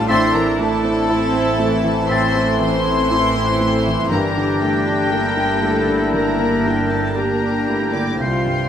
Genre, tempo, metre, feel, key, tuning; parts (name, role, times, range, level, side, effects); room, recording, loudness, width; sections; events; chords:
cinematic, emotional film score for orchestra; 59 BPM; 4/4; rubato; G dorian; A4 = 440 Hz
warm symphonic violin section; melody; 0.0-8.7 s; G5 to D6; -25 LUFS; left 3 dB
warm symphonic violin section; second line; 0.0-8.7 s; G4 to D5; -26 LUFS; left 1 dB
clear concert grand piano; accompaniment; 0.0-8.7 s; C2 to G4; -22 LUFS; equal
rich studio viola section; accompaniment; 0.0-8.7 s; E3 to E4; -24 LUFS; right 1 dB
warm French horn section; sustained chords; 0.0-8.7 s; G3 to F4; -24 LUFS; left 4 dB
rich symphonic cello section; bass; 0.0-8.7 s; C4 to Bb4; -25 LUFS; right 2 dB
warm symphonic double bass section; bass; 0.0-8.7 s; G1 to C2; -26 LUFS; right 4 dB
clear clarinet; second line; 0.1-8.7 s; C4 to F4; -28 LUFS; left 3 dB
clear oboe; second line; 0.1-8.7 s; E5 to G5; -27 LUFS; right 1 dB
silver concert flute; second line; 0.1-8.7 s; A6 to C7; -26 LUFS; left 2 dB
moderate scoring stage reverb, RT60 1.6 s; -15 LUFS; side -9 dB against mid
0.0-8.7 A section
0.1 Am; 4.1 Gmadd9